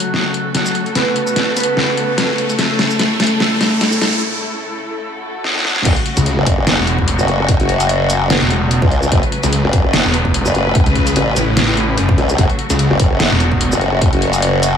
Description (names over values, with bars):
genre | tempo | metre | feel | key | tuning
heavy wobble dubstep | 147 BPM | 4/4 | swing 55% on 16ths, half-time | F# minor | A4 = 440 Hz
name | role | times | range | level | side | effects
mellow electric guitar | melody | 0.0-4.2 s | F#3 to B4 | -19 LUFS | equal | low-pass filter, dub echo
clear studio string section | sustained chords | 0.0-14.8 s | C#3 to B4 | -21 LUFS | left 1 dB | sidechain pumping
dubstep drum kit | drums | 0.0-14.7 s | crash cymbal, hi-hat, shaker, snare drum | -18 LUFS | equal | none
riser and swell | sound effects | 0.5-5.9 s | none | -25 LUFS | right 1 dB | none
formant-sweep wobble bass | bass | 5.9-14.8 s | F#1 to C#2 | -15 LUFS | equal | chorus, overdrive
electronic kick drum | drums | 5.9-14.1 s | none | -16 LUFS | equal | none
snarling distorted saw bass | bass | 6.2-13.7 s | E1 to C#2 | -16 LUFS | equal | distortion, overdrive
room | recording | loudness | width
light reverb | high-pass filter | -12 LUFS | side -8 dB against mid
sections
0.0-5.9 A section; 5.9-14.8 B section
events
build-up 0.0-5.9; drum fill 0.0-4.2, 5.4-5.9; filter sweep on clean electric guitar 0.0-5.9; filter sweep 0.0-5.9; riser 0.5-4.2; break 4.2-5.9; swell 5.0-5.9; drop 5.9-14.8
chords
0.0 F#m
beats
0.14 0.55 | 0.95 1.36 1.77 2.18 | 2.59 3.00 3.40 3.81 | 4.22 4.63 5.04 5.45 | 5.85 6.26 6.67 7.08 | 7.49 7.89 8.30 8.71 | 9.12 9.53 9.94 10.34 | 10.75 11.16 11.57 11.98 | 12.38 12.79 13.20 13.61 | 14.02 14.43